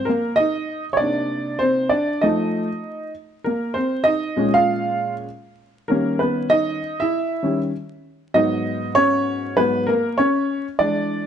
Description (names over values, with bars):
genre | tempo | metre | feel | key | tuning
hip hop | 98 BPM | 4/4 | swing 63% on 16ths | unclear | A4 = 440 Hz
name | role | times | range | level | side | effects
dark baby grand piano | solo | 0.0-11.3 s | Ab2 to F5 | -18 LUFS | equal | none
room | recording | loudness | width
moderate echo chamber reverb, RT60 1.4 s | vinyl crackle, nothing above 10.4 kHz | -18 LUFS | side -8 dB against mid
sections
0.0-11.3 A section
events
grand piano solo 0.0-11.3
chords
0.0 Absus2 (rootless); 1.0 Cm7; 2.2 F7; 3.5 Bbm11; 5.9 Eb7b9; 8.3 Abm11